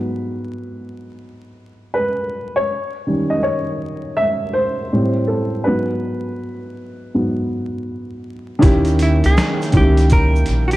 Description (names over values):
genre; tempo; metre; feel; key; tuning
lo-fi hip hop; 81 BPM; 4/4; swing 66% on 16ths; G# minor; A4 = 438 Hz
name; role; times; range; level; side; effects
dark upright piano; accompaniment; 0.0-10.8 s; G#2 to E5; -19 LUFS; equal; none
warm analog pad; sustained chords; 8.6-10.8 s; D#3 to G5; -27 LUFS; right 2 dB; chorus
upright bass; bass; 8.6-10.8 s; A#1 to D#2; -16 LUFS; equal; none
boom bap sampler-style drum kit; drums; 8.6-10.8 s; hi-hat, kick drum, snare drum; -17 LUFS; equal; none
tube shaker; percussion; 8.6-10.8 s; none; -43 LUFS; right 7 dB; none
hollow-body jazz guitar; melody; 9.0-10.8 s; E4 to A#4; -21 LUFS; right 1 dB; none
room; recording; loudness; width
light reverb, small room ambience; vinyl crackle; -16 LUFS; side -17 dB against mid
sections
0.0-8.6 A section; 8.6-10.8 B section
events
upright piano solo 0.0-8.6; filter sweep on upright piano 0.0-8.6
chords
0.0 G#m7; 2.7 D#7; 4.9 Am7; 5.7 G#m7; 8.6 D#7b9